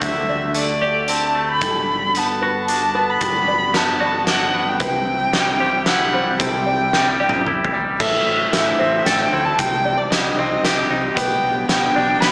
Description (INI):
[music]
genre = post-rock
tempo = 113 BPM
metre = 3/4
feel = straight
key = G major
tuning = A4 = 440 Hz
[part]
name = muted violin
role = melody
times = 0.0-12.3 s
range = D5 to B5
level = -20 LUFS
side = equal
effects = analog delay
[part]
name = brassy analog pad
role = sustained chords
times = 0.0-12.3 s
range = C3 to E5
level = -29 LUFS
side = equal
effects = chorus
[part]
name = felt-muted upright piano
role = arpeggios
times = 0.0-12.3 s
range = A4 to Eb5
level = -29 LUFS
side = equal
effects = analog delay
[part]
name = twangy electric guitar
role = arpeggios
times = 0.0-12.3 s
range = A2 to B4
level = -22 LUFS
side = equal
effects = wide subtle chorus, slapback echo, analog delay
[part]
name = growling fingered electric bass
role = bass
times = 0.0-12.3 s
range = G1 to D2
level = -32 LUFS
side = equal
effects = overdrive
[part]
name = oversized low-tuned drum kit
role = drums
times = 0.0-12.3 s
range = crash cymbal, hi-hat, kick drum, snare drum, toms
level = -21 LUFS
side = equal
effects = none
[sound]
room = wet lush hall reverb, RT60 1.8 s, small room ambience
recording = big arena sound, small speaker sound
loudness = -16 LUFS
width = side -26 dB against mid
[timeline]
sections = 0.0-8.0 A section; 8.0-12.3 B section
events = drum fill 6.9-8.0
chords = 0.0 D7sus4; 1.6 Gmaj7; 4.8 C; 8.0 Am; 9.6 Cm; 11.2 G/B